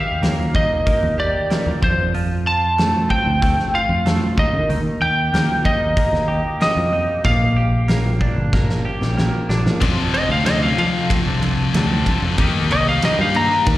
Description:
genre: quiet-loud alternative rock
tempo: 94 BPM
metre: 4/4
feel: straight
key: F mixolydian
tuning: A4 = 440 Hz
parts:
  - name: lightly driven lead guitar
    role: melody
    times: 0.0-13.7 s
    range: C5 to Bb5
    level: -20 LUFS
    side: equal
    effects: slapback echo, plate reverb
  - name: twelve-string electric guitar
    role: arpeggios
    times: 0.0-13.8 s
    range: Bb2 to A4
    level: -24 LUFS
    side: right 1 dB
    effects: lush chorus, plate reverb
  - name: picked electric bass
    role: bass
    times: 0.0-13.8 s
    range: G1 to F3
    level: -21 LUFS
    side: equal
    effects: none
  - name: big rock drum kit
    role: drums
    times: 0.2-13.8 s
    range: crash cymbal, hi-hat, kick drum, ride cymbal, snare drum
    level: -22 LUFS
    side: equal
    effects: none
  - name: scooped high-gain guitar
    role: riff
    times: 9.8-13.8 s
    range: F2 to Eb4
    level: -21 LUFS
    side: left 6 dB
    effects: distortion, slapback echo
room: light reverb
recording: live gig heard through the venue's PA, recital hall reverb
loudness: -16 LUFS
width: side -16 dB against mid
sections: 0.0-9.8 A section; 9.8-13.8 B section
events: drum fill 8.5-9.8; lead electric guitar solo 9.8-13.8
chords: 0.0 Ebadd9; 1.8 F; 4.4 Eb; 7.3 Bb6; 9.8 F6; 12.4 Eb

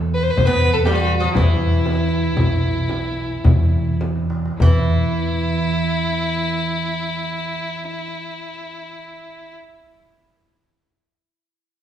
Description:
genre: Arabic maqam ensemble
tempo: 99-124 BPM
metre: 4/4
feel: straight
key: unclear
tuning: A4 = 441 Hz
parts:
  - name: upright bass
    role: bass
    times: 0.0-9.5 s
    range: B1 to E2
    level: -20 LUFS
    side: equal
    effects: none
  - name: rich violin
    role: melody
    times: 0.1-9.5 s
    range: E4 to C5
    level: -24 LUFS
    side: left 1 dB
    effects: none
  - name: darbuka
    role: percussion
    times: 0.4-4.9 s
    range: none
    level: -26 LUFS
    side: equal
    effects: none
  - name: frame drum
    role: percussion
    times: 0.4-4.9 s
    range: none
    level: -24 LUFS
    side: left 1 dB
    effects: none
  - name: oud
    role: second line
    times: 0.5-9.6 s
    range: E3 to B3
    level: -26 LUFS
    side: right 1 dB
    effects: none
room: wet recital hall reverb, RT60 1.7 s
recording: recorded in a church or concert hall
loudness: -17 LUFS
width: side -10 dB against mid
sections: 0.0-4.6 A section; 4.6-9.4 B section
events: slowing down 0.4-4.6; drum fill 4.0-4.6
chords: none

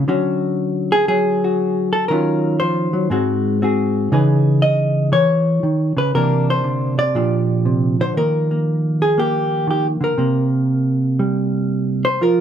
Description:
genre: solo jazz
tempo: 118 BPM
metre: 4/4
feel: swing 67% on 8ths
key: Eb major from 8.2 s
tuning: A4 = 440 Hz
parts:
  - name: hollow-body jazz guitar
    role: solo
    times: 0.0-12.4 s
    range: G#2 to D#5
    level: -15 LUFS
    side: equal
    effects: none
room: moderate club reverb, RT60 0.6 s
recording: minimal, uncompressed stereo recording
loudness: -15 LUFS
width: side -9 dB against mid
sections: 0.0-8.2 A section; 8.2-12.4 B section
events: none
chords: 0.1 Dmaj7; 2.1 D#m9; 3.1 G#7; 4.1 C#m9; 6.1 C9; 7.1 A#69; 8.2 Ebadd9; 10.2 C5

